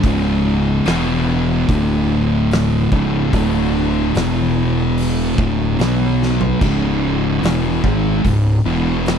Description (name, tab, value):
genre	stoner and doom metal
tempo	73 BPM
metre	4/4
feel	straight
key	C# minor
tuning	A4 = 442 Hz
part	thick fuzz guitar	riff	0.0-9.2 s	C#2 to B3	-19 LUFS	left 9 dB	distortion
part	thick fuzz guitar	riff	0.0-9.2 s	C#2 to B3	-19 LUFS	right 9 dB	distortion
part	fuzz fingered electric bass	bass	0.0-9.2 s	C#1 to B1	-22 LUFS	equal	overdrive, tube saturation
part	oversized low-tuned drum kit	drums	0.0-9.2 s	crash cymbal, hi-hat, kick drum, snare drum, toms	-23 LUFS	equal	none
room	little or no reverb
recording	none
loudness	-14 LUFS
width	side -7 dB against mid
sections	0.0-6.6 A section; 6.6-9.2 B section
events	drum fill 6.2-6.6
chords	0.0 C#5; 0.9 E5; 1.7 D5; 2.9 C#5; 3.3 D5; 4.2 E5; 5.4 D5; 5.8 B5; 6.6 C#m; 8.7 E5